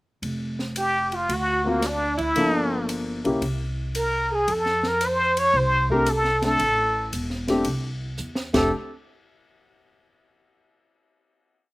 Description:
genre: jazz, small-group swing and bop.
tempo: 113 BPM.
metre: 4/4.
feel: swing 68% on 8ths.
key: F major.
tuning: A4 = 437 Hz.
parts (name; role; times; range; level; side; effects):
upright bass; bass; 0.2-8.7 s; E1 to F2; -29 LUFS; equal; none.
open jazz drum kit; drums; 0.2-8.6 s; crash cymbal, hi-hat, kick drum, ride cymbal, snare drum; -32 LUFS; equal; none.
trumpet with plunger mute; melody; 0.8-8.7 s; A#3 to Db5; -22 LUFS; equal; slapback echo.
warm alto saxophone; second line; 0.8-8.7 s; A3 to Db5; -29 LUFS; right 2 dB; none.
warm grand piano; accompaniment; 1.7-8.7 s; F3 to A4; -24 LUFS; left 2 dB; slapback echo.
room: little or no reverb.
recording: recorded outdoors, with no room sound.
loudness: -21 LUFS.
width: side -21 dB against mid.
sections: 0.2-8.7 A section; 8.7-10.8 final hit.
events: drum fill 8.2-8.7.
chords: 0.2 Fsus2; 1.3 D7alt; 2.4 Gm9; 3.4 Abadd9/C; 4.5 F6; 8.7 N.C..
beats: | 0.23 0.76 1.29 1.82 | 2.36 2.89 3.42 3.95 | 4.48 5.01 5.54 6.07 | 6.60 7.13 7.66 8.19.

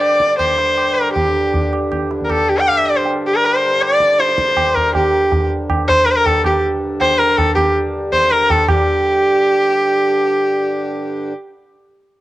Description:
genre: indian classical, Hindustani.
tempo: 160 BPM.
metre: 5/4.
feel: straight.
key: G raga bhimpalasi.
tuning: A4 = 441 Hz.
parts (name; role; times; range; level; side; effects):
clear sarangi; melody; 0.0-11.3 s; G4 to G5; -14 LUFS; equal; cassette tape.
pedal harmonium; drone; 0.0-11.3 s; G2 to D3; -25 LUFS; right 1 dB; cassette tape.
tabla; percussion; 0.0-8.8 s; none; -21 LUFS; right 1 dB; none.
room: light reverb, small room ambience.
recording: home recording on cassette.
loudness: -13 LUFS.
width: side -15 dB against mid.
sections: 0.0-8.7 A section; 8.7-10.5 B section.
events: speeding up 0.0-10.5.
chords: none.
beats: 0.01 0.39 0.78 | 1.16 1.54 1.92 2.30 2.68 | 3.06 3.43 3.81 4.19 4.57 | 4.94 5.32 5.70 6.07 6.45 | 6.82 7.19 7.57 7.94 8.31 | 8.68 9.05 9.43 9.79 10.16.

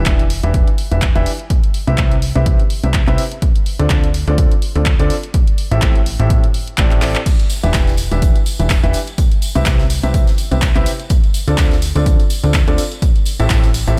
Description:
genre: piano house.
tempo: 125 BPM.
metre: 4/4.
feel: swing 56% on 16ths.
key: C major.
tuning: A4 = 441 Hz.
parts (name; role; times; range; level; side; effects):
clear grand piano; riff; 0.0-14.0 s; A2 to E5; -24 LUFS; equal; sidechain pumping, dub echo.
plucky analog bass; bass; 0.0-14.0 s; E1 to D2; -19 LUFS; equal; sidechain pumping.
electronic kick drum; drums; 0.1-13.6 s; none; -17 LUFS; equal; studio reverb.
house drum kit; drums; 0.1-14.0 s; crash cymbal, handclaps, hi-hat; -26 LUFS; equal; studio reverb.
tight metal drum kit; drums; 7.3-14.0 s; hi-hat, snare drum; -38 LUFS; equal; none.
tambourine; percussion; 7.3-14.0 s; none; -33 LUFS; equal; none.
room: small room ambience.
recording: none.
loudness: -15 LUFS.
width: mono.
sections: 0.0-14.0 A section.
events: drum fill 7.0.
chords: 0.0 Em7; 1.5 Cmaj7; 3.4 Dm7; 5.3 Am7; 7.3 Em7; 9.2 Cmaj7; 11.1 Dm7; 13.0 Am7.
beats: 0.06 0.54 1.02 | 1.50 1.98 2.46 2.94 | 3.42 3.90 4.38 4.86 | 5.34 5.82 6.30 6.78 | 7.26 7.74 8.22 8.70 | 9.18 9.66 10.14 10.62 | 11.10 11.58 12.06 12.54 | 13.02 13.50 13.98.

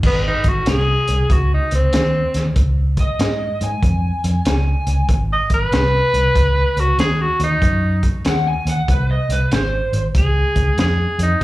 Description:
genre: electric blues shuffle.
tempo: 95 BPM.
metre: 4/4.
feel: swing 65% on 8ths.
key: Ab mixolydian.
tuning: A4 = 440 Hz.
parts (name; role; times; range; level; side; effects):
vintage muted fingered electric bass; bass; 0.0-11.4 s; Ab1 to Ab2; -18 LUFS; equal; none.
crunchy breakbeat drum kit; drums; 0.0-11.4 s; crash cymbal, hi-hat, kick drum, snare drum; -20 LUFS; equal; none.
clear tenor saxophone; melody; 0.1-11.4 s; Cb4 to Eb5; -19 LUFS; equal; slapback echo.
overdriven slide guitar; second line; 3.0-10.0 s; Cb5 to Ab5; -23 LUFS; equal; slapback echo.
room: light reverb.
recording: live gig heard through the venue's PA, club reverb.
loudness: -15 LUFS.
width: side -17 dB against mid.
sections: 0.0-11.4 A section.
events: none.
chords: 0.0 Ab; 2.6 Dbadd9; 5.1 Ab7; 10.1 Db.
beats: | 0.04 0.67 1.30 1.93 | 2.56 3.20 3.83 4.46 | 5.09 5.72 6.36 6.99 | 7.62 8.25 8.88 9.51 | 10.15 10.78 11.41.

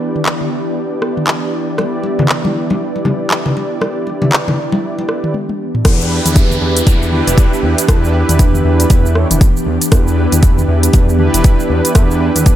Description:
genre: afro house.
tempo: 118 BPM.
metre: 4/4.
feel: swing 60% on 16ths.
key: E minor.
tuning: A4 = 440 Hz.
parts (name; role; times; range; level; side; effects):
ethereal airy pad; sustained chords; 0.0-12.6 s; E3 to G4; -20 LUFS; equal; ensemble chorus, built-in reverb, sidechain pumping.
mellow synth brass; stabs; 0.0-12.6 s; D4 to D5; -19 LUFS; right 2 dB; chorus, sidechain pumping, dub echo.
afro-pop drum kit; drums; 0.2-12.6 s; handclaps, hi-hat, rim click, shaker, toms; -18 LUFS; equal; none.
congas; percussion; 1.8-5.1 s; none; -18 LUFS; left 2 dB; none.
smooth gliding synth bass; bass; 5.8-12.6 s; E1 to E2; -15 LUFS; equal; sidechain pumping.
electronic kick drum; drums; 5.8-12.6 s; none; -10 LUFS; equal; none.
downlifter; sound effects; 5.9-9.9 s; none; -24 LUFS; left 1 dB; none.
room: light reverb.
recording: none.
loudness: -11 LUFS.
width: side -12 dB against mid.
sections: 0.0-5.9 A section; 5.9-12.6 B section.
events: filter sweep on ambient pad 0.0-5.9; drum fill 5.3-5.9; drop 5.9-12.6.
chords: 0.0 Em7.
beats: 0.26 0.77 1.27 | 1.78 2.29 2.80 3.31 | 3.82 4.33 4.83 5.34 | 5.85 6.36 6.87 7.38 | 7.88 8.39 8.90 9.41 | 9.92 10.43 10.94 11.44 | 11.95 12.46.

